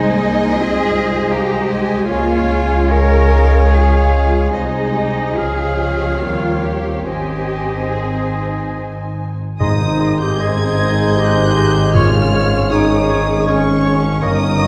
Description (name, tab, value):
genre	classical, slow romantic movement for symphony orchestra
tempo	68-81 BPM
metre	3/4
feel	rubato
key	Ab major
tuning	A4 = 439 Hz
part	rich studio violin section	melody	0.0-14.7 s	C5 to Ab6	-30 LUFS	equal	none
part	clear oboe	second line	0.0-14.7 s	Db5 to F5	-29 LUFS	equal	none
part	mellow clarinet	second line	0.0-14.7 s	Db4 to Db5	-28 LUFS	equal	none
part	mellow silver concert flute	second line	0.0-14.7 s	G5 to Db6	-29 LUFS	equal	none
part	rich studio violin section	second line	0.0-14.7 s	Ab4 to Bb5	-31 LUFS	equal	none
part	warm bassoon	accompaniment	0.0-14.7 s	Ab3 to C4	-28 LUFS	equal	none
part	warm studio viola section	accompaniment	0.0-14.7 s	F3 to Ab4	-26 LUFS	equal	none
part	dark French horn section	sustained chords	0.0-14.7 s	Eb3 to Ab4	-27 LUFS	equal	none
part	rich studio double bass section	bass	0.0-14.7 s	G1 to Eb2	-21 LUFS	equal	none
part	warm studio cello section	bass	0.0-14.7 s	G2 to Bb4	-24 LUFS	equal	none
part	clear trombone section	sustained chords	9.6-14.7 s	Ab2 to Eb4	-26 LUFS	equal	none
part	mellow trumpet section	stabs	9.6-14.7 s	Bb4 to Db5	-27 LUFS	equal	none
part	clear tuba	bass	9.6-14.7 s	G1 to Ab1	-25 LUFS	equal	none
part	timpani	percussion	9.6-13.1 s	Ab2	-22 LUFS	equal	none
room	wet scoring stage reverb, RT60 1.6 s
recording	heard from further back in the room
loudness	-16 LUFS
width	mono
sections	0.0-9.6 A section; 9.6-14.7 A section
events	none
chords	0.0 Ab/C; 2.1 Db; 4.5 Ab/C; 5.4 Db; 6.2 Eb13; 7.1 Ab; 12.0 Db/Ab